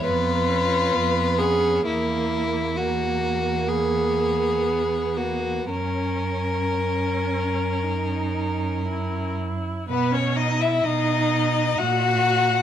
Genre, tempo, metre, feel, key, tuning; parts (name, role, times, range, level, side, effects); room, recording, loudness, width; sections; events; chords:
classical, slow romantic movement for string quartet; 54-67 BPM; 4/4; rubato; A4 = 439 Hz
rich violin; melody; 0.0-12.6 s; A#3 to F#5; -26 LUFS; left 8 dB
rich violin; second line; 0.0-12.6 s; B3 to B4; -25 LUFS; equal
rich viola; accompaniment; 0.0-12.6 s; A#3 to F#4; -29 LUFS; right 4 dB
rich cello; bass; 0.1-12.6 s; E2 to B2; -27 LUFS; right 3 dB
moderate scoring stage reverb, RT60 1.6 s; close, detailed microphones; -21 LUFS; side -10 dB against mid
0.0-9.9 A section; 9.9-12.6 B section
0.0 C#7/E#; 1.9 F#7/E; 5.7 F#; 9.9 B; 11.8 F#/A#